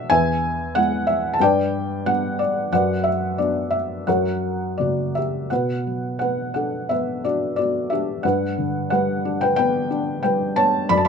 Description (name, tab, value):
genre	classical, lyrical solo piano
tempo	80-93 BPM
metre	4/4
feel	rubato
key	B minor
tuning	A4 = 440 Hz
part	felt-muted upright piano	solo	0.0-11.1 s	E2 to B5	-19 LUFS	left 1 dB	none
room	light reverb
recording	none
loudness	-19 LUFS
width	side -6 dB against mid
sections	0.0-5.5 A section; 5.5-11.1 B section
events	none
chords	0.1 E; 1.4 G; 2.7 Bm/F#; 4.1 F#; 5.5 Bm; 8.2 G